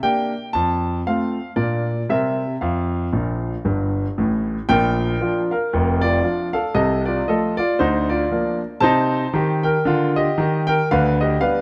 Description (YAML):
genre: jazz, stride piano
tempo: 116 BPM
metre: 4/4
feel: swing 58% on 8ths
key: F major, Bb major from 4.7 s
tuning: A4 = 440 Hz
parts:
  - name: warm concert grand piano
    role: solo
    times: 0.0-11.6 s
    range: F1 to A5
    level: -20 LUFS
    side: equal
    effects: none
room: moderate echo chamber reverb, RT60 2.3 s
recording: none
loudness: -20 LUFS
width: mono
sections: 0.0-4.7 A section; 4.7-11.6 B section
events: grand piano fill 3.1-4.7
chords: 0.0 C7sus2 (rootless); 0.6 F; 1.6 Bb; 2.1 C7; 2.6 F; 4.7 Bb; 6.8 F/C; 7.8 Bb/D; 8.8 Cm7; 10.9 G/D